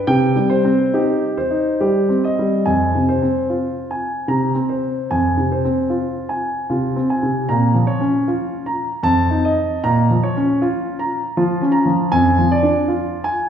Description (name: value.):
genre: classical, baroque-style suite movement for grand piano.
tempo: 68-79 BPM.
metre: 3/4.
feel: rubato.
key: F minor.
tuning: A4 = 442 Hz.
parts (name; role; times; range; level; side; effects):
warm concert grand piano; solo; 0.0-13.5 s; F2 to Bb5; -16 LUFS; equal; none.
room: wet recital hall reverb, RT60 1.8 s.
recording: heard from further back in the room.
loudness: -16 LUFS.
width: side -8 dB against mid.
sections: 0.0-2.7 A section; 2.7-13.5 A section.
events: none.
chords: 0.1 Cm; 2.7 Fm; 4.3 Bbsus2/C; 5.1 Fm; 7.5 Bbm; 9.0 F7; 9.8 Bbm; 12.1 Ddim/F.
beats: | 0.09 0.94 1.80 | 2.67 3.49 4.28 | 5.09 5.88 6.68 | 7.49 8.27 9.04 | 9.83 10.60 11.36 | 12.13 12.89.